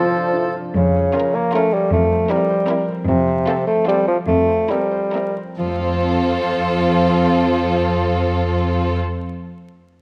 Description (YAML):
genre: cinematic, playful, whimsical film cue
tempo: 131-156 BPM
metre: 3/4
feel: straight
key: F major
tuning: A4 = 440 Hz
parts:
  - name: clear oboe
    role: second line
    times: 0.0-0.6 s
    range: A4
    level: -28 LUFS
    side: equal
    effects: none
  - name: mellow large flute ensemble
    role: second line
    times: 0.0-0.6 s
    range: none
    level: barely audible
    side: none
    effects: none
  - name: warm clarinet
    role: second line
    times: 0.0-0.5 s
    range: F4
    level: -28 LUFS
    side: equal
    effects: none
  - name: mellow bassoon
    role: accompaniment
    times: 0.0-9.0 s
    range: C3 to Bb3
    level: -21 LUFS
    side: equal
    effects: none
  - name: mellow French horn section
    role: sustained chords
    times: 0.0-0.8 s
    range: D4 to E4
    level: -34 LUFS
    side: equal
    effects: none
  - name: concert harp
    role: arpeggios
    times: 0.0-9.4 s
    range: F3 to Db5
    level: -29 LUFS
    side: equal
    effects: none
  - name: rich chamber cello section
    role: bass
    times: 0.8-9.0 s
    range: F2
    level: -23 LUFS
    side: equal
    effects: none
  - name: rich chamber violin section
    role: melody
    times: 1.1-9.0 s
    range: A4 to Bb4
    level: -30 LUFS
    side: equal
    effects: none
  - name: rich chamber violin section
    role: second line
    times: 1.1-9.0 s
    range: E4 to F4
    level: -29 LUFS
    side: equal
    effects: none
  - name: rich chamber viola section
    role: accompaniment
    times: 1.1-9.0 s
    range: C4 to Db4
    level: -29 LUFS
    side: equal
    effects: none
room: moderate scoring stage reverb, RT60 1.8 s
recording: vinyl crackle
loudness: -18 LUFS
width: mono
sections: 0.8-5.6 A section; 5.6-8.3 B section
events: slowing down 2.5-5.6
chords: 0.0 F; 0.8 Bbm/F; 1.9 C7/F; 3.1 F; 4.3 C7/F; 5.6 F